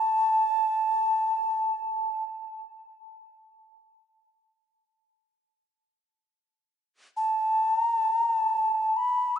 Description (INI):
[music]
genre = world meditative, free-time meditation music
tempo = free time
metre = none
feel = none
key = unclear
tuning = A4 = 439 Hz
[part]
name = mellow alto ocarina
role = solo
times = 0.0-9.4 s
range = A5 to E6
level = -24 LUFS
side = equal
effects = tape echo
[sound]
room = wet church reverb, RT60 3.5 s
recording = nothing above 10.6 kHz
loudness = -23 LUFS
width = side -8 dB against mid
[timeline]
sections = 0.0-6.0 A section; 6.0-9.4 A section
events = none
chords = none